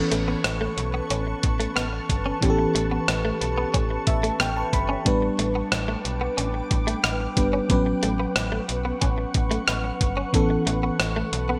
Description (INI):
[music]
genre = 1980s-style pop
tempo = 91 BPM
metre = 4/4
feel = straight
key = A mixolydian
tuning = A4 = 440 Hz
[part]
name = FM electric piano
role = accompaniment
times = 0.0-11.6 s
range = E3 to B5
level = -29 LUFS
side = equal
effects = none
[part]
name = shimmering ambient pad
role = sustained chords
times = 0.0-11.6 s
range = B4 to D6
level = -34 LUFS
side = equal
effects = chorus, built-in reverb
[part]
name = slap-like FM bass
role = bass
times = 0.0-11.6 s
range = G1 to B1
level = -31 LUFS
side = equal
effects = none
[part]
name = direct-recorded clean electric guitar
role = riff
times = 0.1-11.6 s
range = A3 to C#4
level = -34 LUFS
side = equal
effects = ensemble chorus, digital delay
[part]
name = clean 12-bit digital drum machine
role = drums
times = 0.1-11.5 s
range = hi-hat, kick drum, rim click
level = -27 LUFS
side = equal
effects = gated reverb
[sound]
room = moderate plate reverb, RT60 2.8 s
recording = bright 1980s-style digital production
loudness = -24 LUFS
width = mono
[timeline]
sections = 0.0-11.6 A section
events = FM electric piano fill 3.7-5.1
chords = 0.0 Aadd9; 5.1 G/A; 7.7 Bsus2/A; 10.3 Aadd9